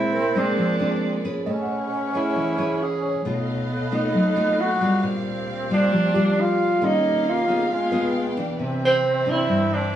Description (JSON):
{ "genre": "bossa nova", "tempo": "135 BPM", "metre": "4/4", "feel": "straight", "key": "unclear", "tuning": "A4 = 440 Hz", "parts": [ { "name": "mellow tenor saxophone", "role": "melody", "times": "0.0-10.0 s", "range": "C4 to G#4", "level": "-22 LUFS", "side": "right 1 dB", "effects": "none" }, { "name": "bright alto flute", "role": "second line", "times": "0.0-10.0 s", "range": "Ab3 to C#4", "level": "-30 LUFS", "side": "right 2 dB", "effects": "none" }, { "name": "nylon-string guitar", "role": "accompaniment", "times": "0.0-10.0 s", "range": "G2 to B4", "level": "-24 LUFS", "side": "equal", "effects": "none" }, { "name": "warm studio string section", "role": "sustained chords", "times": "0.0-10.0 s", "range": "A3 to G5", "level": "-32 LUFS", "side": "equal", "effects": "none" }, { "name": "mellow tine electric piano", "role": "accompaniment", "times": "0.1-3.4, 6.1-8.8 s", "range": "G4 to G#5", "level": "-32 LUFS", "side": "equal", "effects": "medium tremolo" } ], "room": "wet studio ambience, RT60 0.5 s", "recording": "band playing live in one room, small room ambience", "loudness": "-20 LUFS", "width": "side -11 dB against mid", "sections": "0.0-8.6 A section; 8.6-10.0 B section", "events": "none", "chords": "0.0 Bb9; 1.5 Amaj9; 3.2 B7#11; 5.0 Bb6; 6.8 Eb9; 7.7 G7b9; 8.6 Cmaj9" }